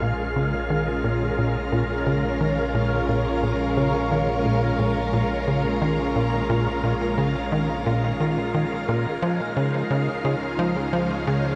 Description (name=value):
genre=ambient, sequencer-driven space music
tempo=88 BPM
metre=4/4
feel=straight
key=Bb minor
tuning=A4 = 441 Hz
part: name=string machine, full ensemble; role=sustained chords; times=0.0-11.6 s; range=Ab3 to F5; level=-26 LUFS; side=equal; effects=phaser, ensemble chorus
part: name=tight sequencer bass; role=riff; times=0.0-11.5 s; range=Bb2 to F3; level=-27 LUFS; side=equal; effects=cassette tape, delay
part: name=analog drone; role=bass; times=0.0-11.6 s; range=Bb1 to Db2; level=-34 LUFS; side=equal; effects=chorus, tube saturation
room=wet shimmer reverb, RT60 7.5 s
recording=none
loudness=-23 LUFS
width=mono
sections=0.0-11.6 A section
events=none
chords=0.0 Bbm7; 9.2 Dbadd9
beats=0.36 | 1.04 1.73 2.41 3.09 | 3.77 4.46 5.14 5.82 | 6.50 7.18 7.86 8.54 | 9.23 9.91 10.59 11.27